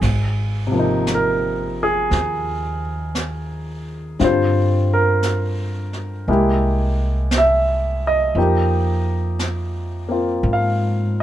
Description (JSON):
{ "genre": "jazz ballad", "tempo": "58 BPM", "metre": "4/4", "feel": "swing 67% on 8ths", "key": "Ab major", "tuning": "A4 = 440 Hz", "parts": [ { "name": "warm grand piano", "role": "accompaniment", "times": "0.0-11.2 s", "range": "C3 to F5", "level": "-19 LUFS", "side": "equal", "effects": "none" }, { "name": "upright bass", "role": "bass", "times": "0.0-11.2 s", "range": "Ab1 to Ab2", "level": "-21 LUFS", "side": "equal", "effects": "none" }, { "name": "jazz brush drum kit", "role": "drums", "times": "0.0-11.2 s", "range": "brushed snare drum, hi-hat, kick drum, ride cymbal, snare drum", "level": "-28 LUFS", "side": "right 1 dB", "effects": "none" } ], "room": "light reverb", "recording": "minimal, uncompressed stereo recording", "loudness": "-17 LUFS", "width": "side -12 dB against mid", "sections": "0.0-11.2 A section", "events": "none", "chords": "0.0 Ab; 4.2 Gm7; 6.3 C7b13; 8.4 Fm9", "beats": "| 0.02 1.07 2.12 3.16 | 4.21 5.25 6.29 7.33 | 8.37 9.41 10.45" }